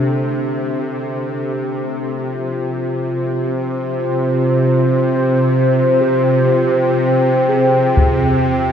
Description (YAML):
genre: dark ambient drone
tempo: 61 BPM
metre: 4/4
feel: straight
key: unclear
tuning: A4 = 441 Hz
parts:
  - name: dark analog pad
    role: sustained chords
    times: 0.0-8.7 s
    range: D4 to G5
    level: -18 LUFS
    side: left 1 dB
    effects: lush chorus
  - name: bowed-like drone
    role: drone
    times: 0.0-8.7 s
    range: C3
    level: -17 LUFS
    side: right 1 dB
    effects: built-in reverb
  - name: bronze singing bowl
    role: texture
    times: 0.0-8.7 s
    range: none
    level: barely audible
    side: none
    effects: none
  - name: gamelan-type bossed gongs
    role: arpeggios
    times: 6.0-8.7 s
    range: E2 to Ab4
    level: -24 LUFS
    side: right 2 dB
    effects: diffuse ambient delay
  - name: taiko ensemble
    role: percussion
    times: 8.0-8.2 s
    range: none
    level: -16 LUFS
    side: equal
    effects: low-pass filter on perc
room: wet huge ambient reverb, RT60 9.2 s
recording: cassette tape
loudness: -14 LUFS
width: side -8 dB against mid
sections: 0.0-8.7 A section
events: none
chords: 0.0 Dsus2; 2.1 Fmadd9